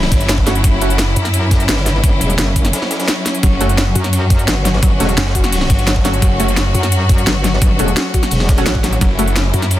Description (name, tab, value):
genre	dark technical drum and bass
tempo	172 BPM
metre	4/4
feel	straight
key	F# phrygian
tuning	A4 = 440 Hz
part	clear symphonic string section	sustained chords	0.0-9.8 s	F#3 to F#4	-20 LUFS	left 1 dB	sidechain pumping
part	snarling distorted saw bass	bass	0.0-1.1, 3.4-6.7, 9.0-9.5 s	F#1 to G1	-17 LUFS	equal	distortion
part	crunchy breakbeat drum kit	drums	0.0-9.8 s	hi-hat, ride cymbal, snare drum	-27 LUFS	equal	none
part	drum and bass drum kit	drums	0.0-9.8 s	hi-hat, snare drum	-19 LUFS	equal	studio reverb
part	electronic kick drum	drums	0.1-9.1 s	none	-14 LUFS	equal	studio reverb
part	orchestra-hit-like synth stab	stabs	0.5-0.9, 3.6-9.3 s	A3 to F#4	-23 LUFS	right 2 dB	built-in reverb, tape echo
part	metallic wobble bass	bass	1.2-9.8 s	E1 to F#2	-16 LUFS	equal	chorus
part	warbly dusty pluck	arpeggios	3.4-9.7 s	F#3 to F#4	-23 LUFS	left 3 dB	chorus, sidechain pumping, tape echo
room	little or no reverb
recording	dense, heavily limited modern master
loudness	-12 LUFS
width	side -14 dB against mid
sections	0.0-9.8 A section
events	break 2.7-3.4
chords	0.0 F#m